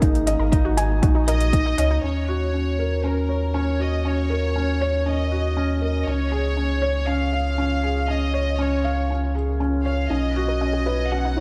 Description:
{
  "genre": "piano and strings electronica",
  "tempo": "119 BPM",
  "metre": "4/4",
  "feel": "straight",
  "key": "Eb minor",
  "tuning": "A4 = 441 Hz",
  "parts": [
    { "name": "granular cloud pad", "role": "sustained chords", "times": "0.0-11.4 s", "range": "Bb3 to Eb5", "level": "-41 LUFS", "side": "equal", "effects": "none" },
    { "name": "warbly dusty pluck", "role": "arpeggios", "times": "0.0-2.0, 10.1-11.4 s", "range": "Eb3 to Eb5", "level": "-34 LUFS", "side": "equal", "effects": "chorus, sidechain pumping, digital delay" },
    { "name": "felt-muted upright piano", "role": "riff", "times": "0.0-11.4 s", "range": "Db4 to Ab5", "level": "-27 LUFS", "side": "equal", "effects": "low-pass filter" },
    { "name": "warm sub bass", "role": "bass", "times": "0.0-11.4 s", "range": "Ab1 to Eb2", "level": "-26 LUFS", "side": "equal", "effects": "sidechain pumping" },
    { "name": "electronic hi-hat", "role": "drums", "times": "0.0-11.4 s", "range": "none", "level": "-37 LUFS", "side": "equal", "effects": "overdrive, low-pass filter on hats" },
    { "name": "electronic kick drum", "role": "drums", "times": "0.0-1.6 s", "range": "none", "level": "-22 LUFS", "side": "equal", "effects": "overdrive" },
    { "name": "warm studio violin section", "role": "melody", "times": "1.3-11.4 s", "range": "Bb4 to F#5", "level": "-30 LUFS", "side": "equal", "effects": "none" }
  ],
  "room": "light reverb",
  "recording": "dark, warm production",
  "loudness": "-22 LUFS",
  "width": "mono",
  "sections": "0.0-2.0 A section; 2.0-11.4 B section",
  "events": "filter sweep on felt piano 2.0-11.4",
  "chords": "0.0 Absus2; 2.0 Ebm7; 6.1 Db; 10.1 Badd9"
}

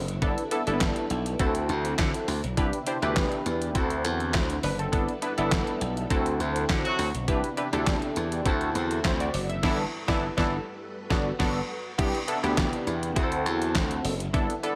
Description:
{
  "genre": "early-eighties boogie funk",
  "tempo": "102 BPM",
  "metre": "4/4",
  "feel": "straight",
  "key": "G major",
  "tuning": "A4 = 440 Hz",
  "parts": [
    { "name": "string machine, full ensemble", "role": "sustained chords", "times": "0.0-14.8 s", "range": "C3 to B4", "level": "-40 LUFS", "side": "equal", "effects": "none" },
    { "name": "glassy slap bass", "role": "bass", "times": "0.0-14.5 s", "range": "F#1 to D3", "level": "-32 LUFS", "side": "equal", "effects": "none" },
    { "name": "detuned 8-bit digital drum machine", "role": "drums", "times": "0.1-14.8 s", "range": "crash cymbal, handclaps, hi-hat, kick drum, snare drum", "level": "-31 LUFS", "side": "equal", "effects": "gated reverb" },
    { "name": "funky polysynth comp", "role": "accompaniment", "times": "0.2-14.7 s", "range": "A3 to E5", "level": "-31 LUFS", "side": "equal", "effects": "chorus" },
    { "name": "warm horn section", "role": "second line", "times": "3.0-10.5 s", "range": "E3 to G4", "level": "-34 LUFS", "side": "equal", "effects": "none" }
  ],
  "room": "light reverb",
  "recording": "none",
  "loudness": "-27 LUFS",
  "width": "mono",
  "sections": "0.0-12.0 A section; 12.0-14.8 A section",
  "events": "band accent 9.6-12.0",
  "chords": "0.2 G69; 1.4 D9; 2.6 Cmaj9; 3.8 D9; 4.9 G69; 6.1 D9; 7.3 Cmaj9; 8.5 D9; 9.6 G69; 10.8 Gmaj9; 12.0 Cmaj9; 13.2 D9"
}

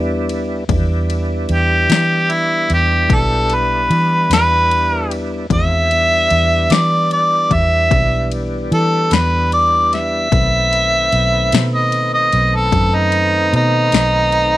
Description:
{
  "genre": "slow blues",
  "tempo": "50 BPM (dotted quarters)",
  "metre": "12/8",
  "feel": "straight",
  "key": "E minor",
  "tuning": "A4 = 440 Hz",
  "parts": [
    { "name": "tonewheel organ", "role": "sustained chords", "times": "0.0-14.6 s", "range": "D#3 to B4", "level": "-23 LUFS", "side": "equal", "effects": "chorus vibrato, slow rotary speaker" },
    { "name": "vintage muted fingered electric bass", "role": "bass", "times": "0.0-14.6 s", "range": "B1 to E3", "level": "-18 LUFS", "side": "equal", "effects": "none" },
    { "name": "punchy analog drum machine", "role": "drums", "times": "0.3-14.5 s", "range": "kick drum, ride cymbal, snare drum", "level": "-18 LUFS", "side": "left 4 dB", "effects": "none" },
    { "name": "mellow harmonica", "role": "melody", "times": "1.5-14.6 s", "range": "D#4 to E5", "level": "-14 LUFS", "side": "equal", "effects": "none" }
  ],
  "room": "little or no reverb",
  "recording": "1960s-style stereo",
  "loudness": "-12 LUFS",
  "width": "side -15 dB against mid",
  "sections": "0.0-14.6 A section",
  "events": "harmonica solo 0.0-14.6",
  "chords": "0.0 Em7; 10.3 B7b9"
}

